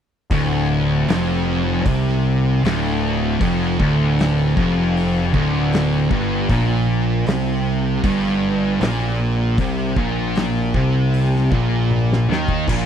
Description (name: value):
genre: stoner and doom metal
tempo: 78 BPM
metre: 4/4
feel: straight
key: D phrygian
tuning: A4 = 440 Hz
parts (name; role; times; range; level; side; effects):
- high-gain distorted guitar; riff; 0.3-12.9 s; D2 to Eb3; -25 LUFS; equal; distortion
- thick fuzz guitar; riff; 0.3-12.9 s; D2 to Eb3; -22 LUFS; left 8 dB; distortion
- thick fuzz guitar; riff; 0.3-12.9 s; D2 to Eb3; -21 LUFS; right 7 dB; distortion
- fuzz picked electric bass; bass; 0.3-12.9 s; D1 to Eb2; -24 LUFS; equal; overdrive, tube saturation
- oversized low-tuned drum kit; drums; 0.3-12.9 s; crash cymbal, hi-hat, kick drum, snare drum, toms; -23 LUFS; equal; none
room: little or no reverb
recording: dry, close 1970s-style studio recording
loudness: -16 LUFS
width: side -8 dB against mid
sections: 0.3-12.9 A section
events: drum fill 11.9-12.7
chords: 0.3 Dm; 6.5 Bb5